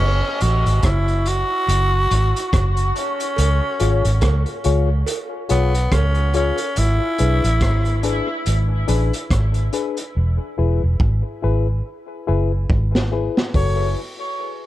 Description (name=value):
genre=dub reggae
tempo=71 BPM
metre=4/4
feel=swing 57% on 16ths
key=F# minor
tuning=A4 = 445 Hz
part: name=raspy tenor saxophone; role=melody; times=0.0-8.0, 13.6-13.9 s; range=B3 to C#5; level=-23 LUFS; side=equal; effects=dub echo
part: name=vintage muted fingered electric bass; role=bass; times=0.0-13.9 s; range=E1 to C#2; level=-18 LUFS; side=equal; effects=none
part: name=reed electric piano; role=stabs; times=0.4-13.9 s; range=D4 to C#5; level=-26 LUFS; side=left 7 dB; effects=overdrive, high-pass filter, dub echo
part: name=crunchy breakbeat drum kit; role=drums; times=0.4-13.8 s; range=hi-hat, kick drum, rim click, snare drum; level=-24 LUFS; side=equal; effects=none
part: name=cowbell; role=percussion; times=0.8-6.1 s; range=none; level=-33 LUFS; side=right 8 dB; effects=high-pass filter on perc, dub echo
room=light reverb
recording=echo-heavy mix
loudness=-17 LUFS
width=side -15 dB against mid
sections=0.0-13.5 A section; 13.5-14.7 B section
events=drum fill 10.2-13.5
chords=0.0 F#m; 3.4 C#; 6.8 G#dim; 10.2 E; 13.5 F#m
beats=0.84 1.68 2.53 | 3.38 4.22 5.07 5.92 | 6.76 7.61 8.46 9.31 | 10.15 11.00 11.85 12.70 | 13.54